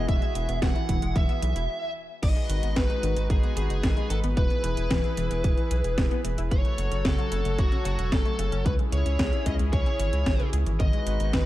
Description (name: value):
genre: italo disco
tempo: 112 BPM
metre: 4/4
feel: straight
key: E major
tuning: A4 = 440 Hz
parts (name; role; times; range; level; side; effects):
- biting lead guitar; melody; 0.0-11.5 s; F#4 to F#5; -32 LUFS; left 1 dB; overdrive, ping-pong delay
- warm analog pad; sustained chords; 0.0-11.5 s; E3 to C#5; -35 LUFS; equal; chorus
- analog pluck; arpeggios; 0.0-11.5 s; C#3 to G#4; -35 LUFS; left 2 dB; chorus, phaser, vintage 12-bit sampler grit, ping-pong delay
- round analog bass; bass; 0.0-11.5 s; E1 to C#2; -27 LUFS; equal; none
- electronic kick drum; drums; 0.1-11.4 s; none; -25 LUFS; equal; overdrive
- house drum kit; drums; 0.1-11.4 s; crash cymbal, hi-hat, snare drum; -33 LUFS; equal; overdrive
room: light reverb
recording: dark, warm production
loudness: -23 LUFS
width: side -15 dB against mid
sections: 0.0-2.2 A section; 2.2-11.5 B section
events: filter sweep on synth arpeggio sound 0.0-2.2; break 1.7-2.2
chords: 0.0 Eadd9; 2.2 G#m7; 4.4 E; 6.5 F#m; 8.7 C#m; 10.8 G#m7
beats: | 0.09 0.62 1.16 1.69 | 2.23 2.76 3.30 3.84 | 4.37 4.91 5.44 5.98 | 6.51 7.05 7.59 8.12 | 8.66 9.19 9.73 10.26 | 10.80 11.34